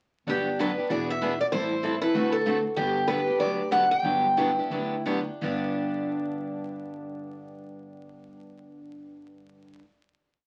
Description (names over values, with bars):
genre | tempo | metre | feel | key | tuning
acoustic string swing (jazz manouche) | 163-192 BPM | 4/4 | swing 61% on 8ths | G major | A4 = 440 Hz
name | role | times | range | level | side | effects
picked acoustic archtop guitar | melody | 0.3-5.0 s | G4 to G5 | -28 LUFS | equal | none
picked plugged-in steel-string acoustic guitar | second line | 0.3-9.8 s | D4 to G4 | -39 LUFS | equal | none
picked steel-string acoustic guitar | accompaniment | 0.3-9.8 s | G2 to A4 | -34 LUFS | equal | none
picked steel-string acoustic guitar | accompaniment | 0.3-9.8 s | G2 to B4 | -37 LUFS | equal | none
upright bass | bass | 0.3-9.8 s | E1 to D2 | -39 LUFS | equal | none
room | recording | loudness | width
moderate studio reverb, RT60 0.5 s | very old 78 rpm record, vinyl crackle | -26 LUFS | mono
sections
0.3-5.4 A section; 5.4-8.4 final chord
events
slowing down 2.8-5.4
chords
0.3 Gmaj7; 0.9 E7; 1.5 Am7; 2.1 D7; 2.8 Gmaj7; 5.4 G